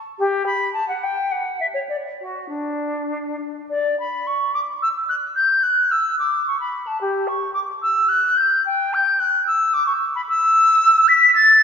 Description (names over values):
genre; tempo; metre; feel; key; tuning
classical, baroque-style fantasia for unaccompanied flute; 96-114 BPM; 3/4; rubato; D major; A4 = 441 Hz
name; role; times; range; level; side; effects
silver concert flute; solo; 0.2-11.6 s; D4 to B6; -16 LUFS; left 1 dB; none
room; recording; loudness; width
wet church reverb, RT60 2.5 s; heard from further back in the room; -16 LUFS; side -7 dB against mid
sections
0.0-3.7 A section; 3.7-11.6 B section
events
none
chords
none